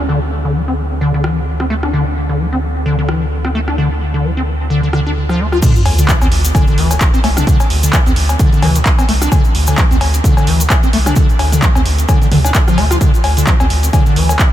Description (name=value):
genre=acid house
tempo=130 BPM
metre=4/4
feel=swing 56% on 16ths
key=D minor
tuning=A4 = 440 Hz
part: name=acid bass, square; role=riff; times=0.0-14.3 s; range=D3 to F4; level=-17 LUFS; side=left 1 dB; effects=overdrive, lush chorus, sidechain pumping, tape echo
part: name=saturated sub bass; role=bass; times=0.0-14.4 s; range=C2 to D2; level=-16 LUFS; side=equal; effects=sidechain pumping
part: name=sub drop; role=sound effects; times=0.0-0.1, 5.6-7.5 s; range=none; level=-19 LUFS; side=right 1 dB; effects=none
part: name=punchy analog drum machine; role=drums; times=1.2-14.5 s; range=cowbell, crash cymbal, handclaps, hi-hat, rim click, toms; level=-19 LUFS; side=left 1 dB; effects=none
part: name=electronic kick drum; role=drums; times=5.6-14.5 s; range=none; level=-12 LUFS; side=equal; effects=none
part: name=cabasa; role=percussion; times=5.6-14.5 s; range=none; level=-26 LUFS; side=left 2 dB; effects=none
room=light reverb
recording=none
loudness=-11 LUFS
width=side -12 dB against mid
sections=0.0-5.6 A section; 5.6-14.5 B section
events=filter sweep on acid bass 0.0-5.6; drop 5.6-14.5; impact 5.6-7.5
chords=none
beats=| 0.09 0.55 1.01 1.47 | 1.93 2.40 2.86 3.32 | 3.78 4.24 4.70 5.16 | 5.62 6.09 6.55 7.01 | 7.47 7.93 8.39 8.86 | 9.32 9.78 10.24 10.70 | 11.16 11.62 12.09 12.55 | 13.01 13.47 13.93 14.39